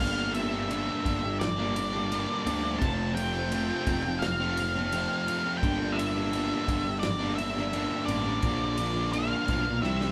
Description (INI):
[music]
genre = quiet-loud alternative rock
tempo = 85 BPM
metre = 4/4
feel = straight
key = G dorian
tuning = A4 = 441 Hz
[part]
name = octave-fuzz lead guitar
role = melody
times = 0.0-10.1 s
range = D5 to A5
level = -34 LUFS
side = equal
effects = distortion
[part]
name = string machine, violins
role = sustained chords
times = 0.0-10.1 s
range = E4 to Bb5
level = -46 LUFS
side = equal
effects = none
[part]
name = distorted electric guitar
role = riff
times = 0.0-10.1 s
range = F2 to E4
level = -38 LUFS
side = equal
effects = distortion
[part]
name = thick fuzz guitar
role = riff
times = 0.0-10.1 s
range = F2 to E4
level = -34 LUFS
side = equal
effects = distortion
[part]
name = fuzz picked electric bass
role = bass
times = 0.0-10.1 s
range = F1 to D2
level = -36 LUFS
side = equal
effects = overdrive
[part]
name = loose indie drum kit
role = drums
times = 0.3-10.1 s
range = kick drum, ride cymbal, snare drum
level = -37 LUFS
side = equal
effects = none
[sound]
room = moderate stone room reverb, RT60 1.3 s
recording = band playing live in one room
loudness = -29 LUFS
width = mono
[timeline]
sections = 0.0-10.1 A section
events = drum fill 9.8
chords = 0.0 Gm; 2.8 F; 5.6 Gm; 8.4 Bb